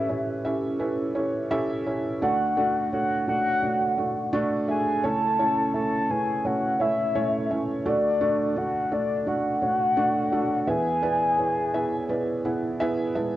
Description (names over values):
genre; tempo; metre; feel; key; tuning
pop; 85 BPM; 4/4; straight; A major; A4 = 441 Hz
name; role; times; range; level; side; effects
soft octave-layered synth lead; melody; 0.0-12.8 s; D5 to A5; -24 LUFS; left 1 dB; chorus, phaser, cassette tape
felt-muted upright piano; accompaniment; 0.0-13.4 s; A1 to A5; -26 LUFS; right 1 dB; cassette tape
room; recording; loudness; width
moderate spring reverb, RT60 1.3 s, small room ambience; home recording on cassette; -22 LUFS; side -14 dB against mid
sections
0.0-13.4 A section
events
felt piano fill 12.4-13.4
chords
0.0 A7; 2.2 D; 5.0 A/C#; 7.9 D; 10.7 E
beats
0.09 0.80 1.50 | 2.21 2.92 3.62 4.33 | 5.03 5.74 6.45 7.15 | 7.86 8.56 9.27 9.98 | 10.68 11.39 12.09 12.80